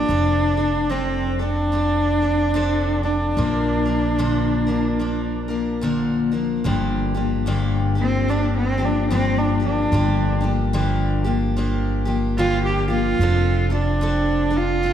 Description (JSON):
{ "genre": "acoustic folk duo or small band", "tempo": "73 BPM", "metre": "4/4", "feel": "swing 60% on 8ths", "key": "G minor", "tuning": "A4 = 443 Hz", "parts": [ { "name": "warm cello", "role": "melody", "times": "0.0-14.9 s", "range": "C4 to G4", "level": "-22 LUFS", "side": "right 1 dB", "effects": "none" }, { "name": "picked steel-string acoustic guitar", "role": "accompaniment", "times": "0.0-14.9 s", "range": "G2 to Bb4", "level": "-23 LUFS", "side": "left 3 dB", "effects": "none" }, { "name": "upright bass", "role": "bass", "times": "0.0-14.9 s", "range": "F1 to Bb1", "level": "-23 LUFS", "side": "equal", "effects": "none" } ], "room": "wet concert hall reverb, RT60 2.1 s", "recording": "heard from further back in the room", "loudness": "-18 LUFS", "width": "side -10 dB against mid", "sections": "0.0-6.6 A section; 6.6-14.9 B section", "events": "cello solo 6.6-14.9", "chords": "0.1 F6; 3.4 Bb; 6.6 Gm7; 13.2 F6" }